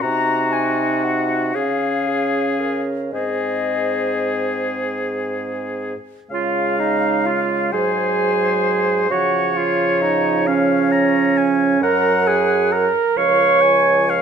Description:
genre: classical, slow romantic movement for wind quintet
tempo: 37-45 BPM (dotted quarters)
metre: 6/8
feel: rubato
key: Db major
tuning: A4 = 439 Hz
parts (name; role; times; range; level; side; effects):
- concert flute; melody; 0.0-14.2 s; Db5 to Db6; -24 LUFS; left 9 dB; none
- clear oboe; second line; 0.0-14.2 s; Gb4 to Bb5; -23 LUFS; left 5 dB; none
- bright clarinet; accompaniment; 0.0-14.2 s; Db4 to Db5; -20 LUFS; right 7 dB; none
- mellow French horn; accompaniment; 0.0-14.2 s; F3 to Eb4; -27 LUFS; equal; none
- warm bassoon; bass; 0.0-14.2 s; Db2 to Db3; -23 LUFS; right 2 dB; none
room: moderate recital hall reverb, RT60 1.4 s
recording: close, detailed microphones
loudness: -16 LUFS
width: side -7 dB against mid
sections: 0.0-6.3 A section; 6.3-14.2 B section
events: none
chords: 0.0 Cm7b5; 1.6 Db; 3.1 Ab; 6.3 Db; 7.7 Ab7; 9.1 Db; 11.8 Gbadd9; 13.2 Db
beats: | 0.04 1.56 | 3.13 4.74 | 6.33 7.74 | 9.11 10.47 | 11.83 13.18

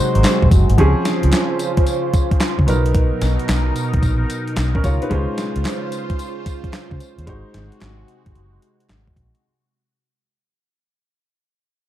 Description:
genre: R&B, new jack swing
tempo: 111 BPM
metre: 4/4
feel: swing 66% on 16ths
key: Db major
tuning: A4 = 440 Hz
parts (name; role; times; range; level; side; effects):
- direct-recorded clean electric guitar; melody; 0.0-0.5 s; C5; -25 LUFS; right 2 dB; digital delay
- clear concert grand piano; accompaniment; 0.0-9.5 s; F3 to Db5; -23 LUFS; equal; none
- phased analog pad; sustained chords; 0.0-9.4 s; Cb3 to C5; -24 LUFS; right 1 dB; phaser, chorus
- vintage muted fingered electric bass; bass; 0.2-9.3 s; Gb1 to Db3; -17 LUFS; equal; none
- crisp 8-bit digital drum machine; drums; 0.2-9.4 s; handclaps, hi-hat, kick drum, snare drum, tambourine; -19 LUFS; equal; overdrive
- group handclap; percussion; 0.2-9.1 s; none; -37 LUFS; right 4 dB; none
room: little or no reverb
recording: dark, warm production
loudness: -15 LUFS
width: side -13 dB against mid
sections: 0.8-9.4 A section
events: fade-out 0.8-9.4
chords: 0.0 Ab7; 0.8 Dbmaj7; 2.7 Cbmaj7; 5.1 Dbmaj7; 7.3 Ab7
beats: 0.24 | 0.78 1.32 1.86 2.41 | 2.95 3.49 4.03 4.57 | 5.11 5.65 6.19 6.73 | 7.27 7.81 8.35 8.89

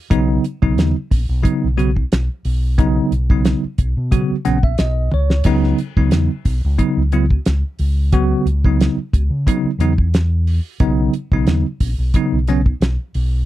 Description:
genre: electric jazz fusion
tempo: 90 BPM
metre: 4/4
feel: swing 54% on 16ths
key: unclear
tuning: A4 = 445 Hz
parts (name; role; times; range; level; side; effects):
- bell-like tine electric piano; accompaniment; 0.1-12.7 s; C#3 to F#5; -18 LUFS; right 1 dB; fast stereo tremolo
- fingered electric bass; bass; 0.1-13.4 s; A#1 to C#3; -17 LUFS; equal; none
- damped 70s drum kit; drums; 0.1-13.3 s; crash cymbal, hi-hat, kick drum, snare drum, toms; -16 LUFS; equal; none
room: little or no reverb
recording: dry, close 1970s-style studio recording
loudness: -15 LUFS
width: side -14 dB against mid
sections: 0.0-13.5 A section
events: tine electric piano fill 4.1-5.5; drum fill 5.1-5.5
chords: 0.1 B; 5.5 C#m11; 10.8 B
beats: | 0.11 0.78 1.45 2.12 | 2.79 3.46 4.12 4.79 | 5.46 6.13 6.79 7.46 | 8.13 8.80 9.46 10.13 | 10.80 11.47 12.14 12.81

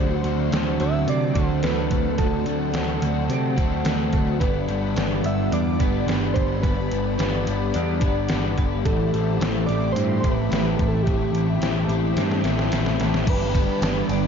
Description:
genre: rock, shoegaze and dream pop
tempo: 108 BPM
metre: 4/4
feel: straight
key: G major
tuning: A4 = 441 Hz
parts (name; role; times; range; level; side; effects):
- soft struck synth lead; melody; 0.0-14.3 s; G4 to E5; -30 LUFS; right 4 dB; chorus, slapback echo
- evolving wavetable pad; sustained chords; 0.0-14.3 s; G4 to D6; -32 LUFS; right 1 dB; chorus, built-in reverb
- twelve-string electric guitar; arpeggios; 0.0-14.3 s; E3 to G4; -32 LUFS; right 1 dB; lush chorus, slapback echo
- overdriven electric guitar; riff; 0.0-14.3 s; G2 to B4; -27 LUFS; left 12 dB; analog chorus
- overdriven semi-hollow guitar; riff; 0.0-14.3 s; G2 to C5; -29 LUFS; right 12 dB; reverse reverb
- growling picked electric bass; bass; 0.0-14.3 s; G1 to C3; -26 LUFS; equal; overdrive
- detuned 8-bit digital drum machine; drums; 0.2-14.2 s; crash cymbal, hi-hat, kick drum, ride cymbal, snare drum; -25 LUFS; equal; none
- tambourine; percussion; 13.6-14.2 s; none; -46 LUFS; right 18 dB; none
room: light reverb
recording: dark, warm production, nothing above 7.4 kHz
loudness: -20 LUFS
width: side -7 dB against mid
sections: 0.0-13.3 A section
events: drum fill 12.2-13.3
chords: 0.0 D7; 4.4 Gmaj7; 8.9 Am7; 13.3 G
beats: 0.53 1.08 1.64 | 2.20 2.75 3.31 3.86 | 4.42 4.97 5.53 6.08 | 6.64 7.19 7.75 8.30 | 8.86 9.41 9.96 10.52 | 11.07 11.62 12.17 12.72 | 13.27 13.82

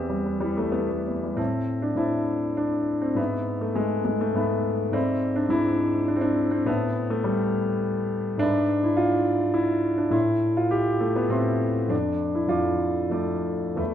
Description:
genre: classical, romantic character piece for solo piano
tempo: 89-106 BPM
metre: 3/4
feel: rubato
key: A minor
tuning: A4 = 442 Hz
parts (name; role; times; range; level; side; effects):
- warm concert grand piano; solo; 0.0-13.9 s; E2 to D6; -22 LUFS; equal; none
room: moderate recital hall reverb, RT60 1.5 s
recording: dark, warm production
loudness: -22 LUFS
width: side -10 dB against mid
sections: 0.0-1.4 A section; 1.4-13.9 B section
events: none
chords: 0.0 Em; 1.4 Am; 3.2 E/G#; 5.0 E7/G#; 6.7 Am; 8.4 E/G#; 10.1 Am; 11.9 Dm/F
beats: 0.10 0.75 | 1.39 1.99 2.59 | 3.18 3.78 4.37 | 4.95 5.53 6.10 | 6.68 7.26 7.83 | 8.42 8.99 9.56 | 10.14 10.74 11.33 | 11.92 12.51 13.13 | 13.79

